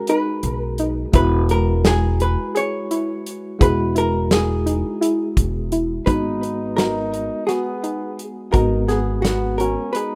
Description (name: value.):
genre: progressive instrumental, band music in an uneven meter.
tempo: 170 BPM (eighths).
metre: 7/8.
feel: straight.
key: G# minor.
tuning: A4 = 440 Hz.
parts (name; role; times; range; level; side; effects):
vintage hollow-body jazz guitar; melody; 0.0-10.2 s; F#4 to C#5; -27 LUFS; equal; tape echo.
tine electric piano; accompaniment; 0.0-10.2 s; G#3 to G#4; -28 LUFS; equal; none.
soft round pluck; arpeggios; 0.1-10.2 s; D#4 to G#4; -26 LUFS; equal; chorus.
natural country drum kit; drums; 0.1-10.1 s; hi-hat, kick drum, snare drum; -22 LUFS; equal; none.
upright bass; bass; 0.4-9.7 s; E1 to B1; -24 LUFS; equal; none.
mellow flugelhorn; second line; 6.1-10.2 s; B3 to D#4; -31 LUFS; equal; none.
room: small room ambience.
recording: rough home demo mix.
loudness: -20 LUFS.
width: mono.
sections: 0.0-6.1 A section; 6.1-10.2 B section.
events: none.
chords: 0.0 G#m7; 1.1 Eadd9; 6.1 G#m7.